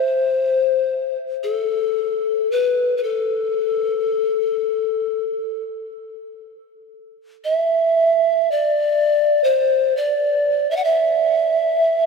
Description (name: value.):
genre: world meditative, free-time meditation music.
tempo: free time.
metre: none.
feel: none.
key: A minor.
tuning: A4 = 440 Hz.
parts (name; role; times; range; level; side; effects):
mellow hollow pan flute; solo; 0.0-12.1 s; A4 to F#5; -17 LUFS; left 1 dB; ping-pong delay.
room: wet cathedral reverb, RT60 5.1 s.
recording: none.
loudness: -17 LUFS.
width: side -4 dB against mid.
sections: 0.0-12.1 A section.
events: none.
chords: none.